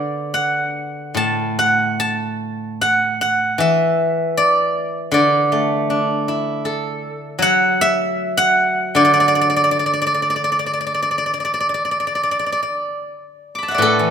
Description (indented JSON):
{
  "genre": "chinese traditional, Chinese solo plucked strings",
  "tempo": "71-80 BPM",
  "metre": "4/4",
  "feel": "rubato",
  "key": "D gong mode",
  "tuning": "A4 = 440 Hz",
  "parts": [
    { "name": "steel-string zither", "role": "solo", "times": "0.0-14.1 s", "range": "A2 to D6", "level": "-16 LUFS", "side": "equal", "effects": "none" }
  ],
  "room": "moderate recital hall reverb, RT60 1.6 s",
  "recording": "minimal, uncompressed stereo recording",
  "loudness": "-16 LUFS",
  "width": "side -8 dB against mid",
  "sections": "0.0-13.8 A section",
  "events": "none",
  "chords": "none"
}